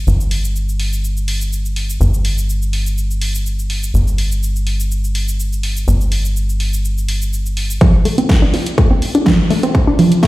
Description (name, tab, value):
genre	progressive house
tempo	124 BPM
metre	4/4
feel	straight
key	unclear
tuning	A4 = 439 Hz
part	tight sequencer bass	bass	0.0-7.8 s	G1	-16 LUFS	equal	sidechain pumping
part	big-room dance drum kit	drums	0.1-10.3 s	cabasa, hi-hat, snare drum	-23 LUFS	equal	none
part	analog pluck	arpeggios	7.8-10.3 s	F3 to D4	-14 LUFS	equal	chorus, sidechain pumping, tape echo
part	electronic kick drum	drums	7.8-10.3 s	none	-13 LUFS	equal	none
room	moderate lush hall reverb, RT60 2.1 s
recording	played on a big sound system in a bare room, stone room reverb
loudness	-14 LUFS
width	side -18 dB against mid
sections	0.0-7.8 A section; 7.8-10.3 B section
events	build-up 7.8-10.3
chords	0.0 N.C.; 7.8 Dm7